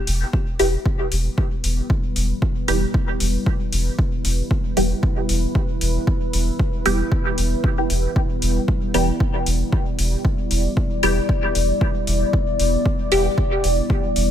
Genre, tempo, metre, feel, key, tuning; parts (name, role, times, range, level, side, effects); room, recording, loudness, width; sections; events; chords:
dub techno; 115 BPM; 4/4; swing 55% on 16ths; E minor; A4 = 439 Hz
deep dark ambient pad; sustained chords; 1.1-14.3 s; G3 to D5; -25 LUFS; left 1 dB; chorus, built-in reverb, sidechain pumping
soft dub sub bass; bass; 0.1-14.3 s; E1; -21 LUFS; equal; sidechain pumping
electronic hi-hat; drums; 0.1-14.3 s; -28 LUFS; left 2 dB; overdrive, studio reverb
electronic kick drum; drums; 0.3-14.0 s; -21 LUFS; equal; overdrive, studio reverb
filtered dub chord stab; stabs; 0.6-13.3 s; E3 to G4; -23 LUFS; equal; phaser, sidechain pumping, dub echo
digital ambience; echo-heavy mix; -18 LUFS; side -10 dB against mid
0.0-14.3 A section
0.0 Em